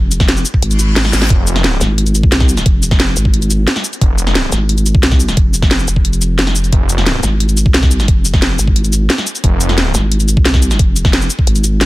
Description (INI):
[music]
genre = dark technical drum and bass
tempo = 177 BPM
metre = 4/4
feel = straight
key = F minor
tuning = A4 = 441 Hz
[part]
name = vowel-sweep wobble bass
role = bass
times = 0.0-11.9 s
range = F1 to C2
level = -14 LUFS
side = equal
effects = chorus
[part]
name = drum and bass drum kit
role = drums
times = 0.1-11.9 s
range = hi-hat, shaker, snare drum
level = -16 LUFS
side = equal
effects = none
[part]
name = electronic kick drum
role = drums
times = 0.2-11.5 s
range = none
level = -12 LUFS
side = equal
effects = overdrive
[part]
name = reverse cymbal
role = sound effects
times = 0.7-1.3 s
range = none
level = -25 LUFS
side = left 3 dB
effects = none
[part]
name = wide detuned saw bass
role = bass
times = 1.3-1.8, 4.0-4.5, 6.7-7.2, 9.4-9.9 s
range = F1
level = -15 LUFS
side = equal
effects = chorus, sidechain pumping
[sound]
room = little or no reverb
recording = dense, heavily limited modern master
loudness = -10 LUFS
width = side -18 dB against mid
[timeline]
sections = 0.0-11.9 A section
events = reverse cymbal 0.7-1.3; drum fill 1.1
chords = 0.0 F5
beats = 0.28 0.62 0.96 | 1.30 1.64 1.98 2.32 | 2.66 3.00 3.34 3.67 | 4.01 4.35 4.69 5.03 | 5.37 5.71 6.05 6.39 | 6.73 7.07 7.40 7.74 | 8.08 8.42 8.76 9.10 | 9.44 9.78 10.12 10.46 | 10.79 11.13 11.47 11.81